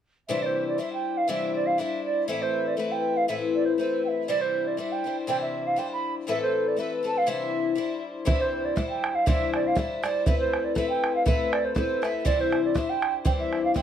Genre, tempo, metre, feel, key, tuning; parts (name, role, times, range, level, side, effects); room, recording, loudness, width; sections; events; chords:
celtic folk, Celtic polka; 120 BPM; 2/4; swing 54% on 8ths; C major; A4 = 440 Hz
mellow wooden flute; melody; 0.3-13.8 s; C5 to B5; -27 LUFS; right 4 dB; plate reverb
picked twelve-string acoustic guitar; accompaniment; 0.3-13.8 s; A2 to C5; -27 LUFS; left 5 dB
bodhran; percussion; 8.3-13.8 s; -26 LUFS; right 2 dB
light reverb; dark, warm production; -23 LUFS; side -9 dB against mid
0.3-8.3 A section; 8.3-13.8 A section
0.3 Cadd9; 2.3 Amadd9; 4.3 Cadd9; 6.3 Amadd9; 7.3 Cadd9; 10.3 Amadd9; 12.3 Cadd9